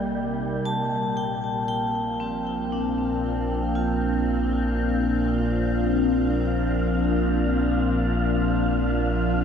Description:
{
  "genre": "ambient",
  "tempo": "59 BPM",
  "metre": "4/4",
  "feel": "straight",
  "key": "Bb major",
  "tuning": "A4 = 440 Hz",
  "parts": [
    { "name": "evolving wavetable pad", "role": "sustained chords", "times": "0.0-9.4 s", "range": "Bb2 to Eb4", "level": "-24 LUFS", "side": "left 1 dB", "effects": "chorus, built-in reverb, phaser" },
    { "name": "round analog bass", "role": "bass", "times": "0.0-9.4 s", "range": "Bb1", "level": "-29 LUFS", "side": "equal", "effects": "none" },
    { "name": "analog drone", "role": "drone", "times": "0.0-9.4 s", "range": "Bb3", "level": "-30 LUFS", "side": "right 1 dB", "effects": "chorus" },
    { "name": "wind-like tuned noise texture", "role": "texture", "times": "0.0-9.4 s", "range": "F4 to G5", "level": "-33 LUFS", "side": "right 1 dB", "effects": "built-in reverb" },
    { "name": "vibraphone with hard mallets", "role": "arpeggios", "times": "0.7-9.4 s", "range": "C4 to A5", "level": "-32 LUFS", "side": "left 1 dB", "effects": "ping-pong delay" }
  ],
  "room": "wet huge ambient reverb, RT60 7.7 s",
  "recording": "none",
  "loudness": "-22 LUFS",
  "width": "side -7 dB against mid",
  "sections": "0.0-9.4 A section",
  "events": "none",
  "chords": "0.0 Cm9/Bb; 0.6 Bb69"
}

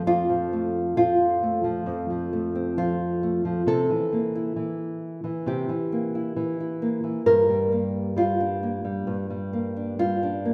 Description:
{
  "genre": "folk, solo fingerstyle acoustic guitar",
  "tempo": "66 BPM",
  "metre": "4/4",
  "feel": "straight",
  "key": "F major",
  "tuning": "A4 = 439 Hz",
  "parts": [
    { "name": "nylon-string guitar", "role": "solo", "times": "0.0-10.5 s", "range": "F2 to Bb4", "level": "-25 LUFS", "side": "equal", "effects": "none" }
  ],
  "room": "wet recital hall reverb, RT60 1.7 s",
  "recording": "recorded in a church or concert hall",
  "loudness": "-25 LUFS",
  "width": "mono",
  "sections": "0.0-10.5 A section",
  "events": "none",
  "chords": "0.0 F; 3.7 C7; 7.3 Gm7"
}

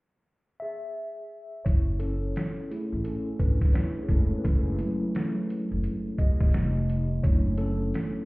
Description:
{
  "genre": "lo-fi hip hop",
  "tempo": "86 BPM",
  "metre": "4/4",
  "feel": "swing 59% on 16ths",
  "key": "F# minor",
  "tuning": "A4 = 439 Hz",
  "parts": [
    { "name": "mellow tine electric piano", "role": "accompaniment", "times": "0.6-8.3 s", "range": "F#3 to E5", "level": "-31 LUFS", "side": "equal", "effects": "medium stereo tremolo, cassette tape, low-pass filter" },
    { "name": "upright bass", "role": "bass", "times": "1.7-7.9 s", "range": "E1 to A1", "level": "-27 LUFS", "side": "equal", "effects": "none" },
    { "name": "trip hop sampler-style drum kit", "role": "drums", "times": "1.7-8.1 s", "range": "hi-hat, kick drum, snare drum", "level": "-25 LUFS", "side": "equal", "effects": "none" }
  ],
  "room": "moderate small room reverb, RT60 0.5 s",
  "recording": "heard muffled through a wall, cassette tape, stone room reverb, EQ",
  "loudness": "-24 LUFS",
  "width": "side -23 dB against mid",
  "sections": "0.0-1.7 A section; 1.7-8.3 B section",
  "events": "tine electric piano solo 1.7-8.3",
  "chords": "0.0 N.C.; 1.7 F#m9; 6.5 F9; 7.2 E9sus4/F#"
}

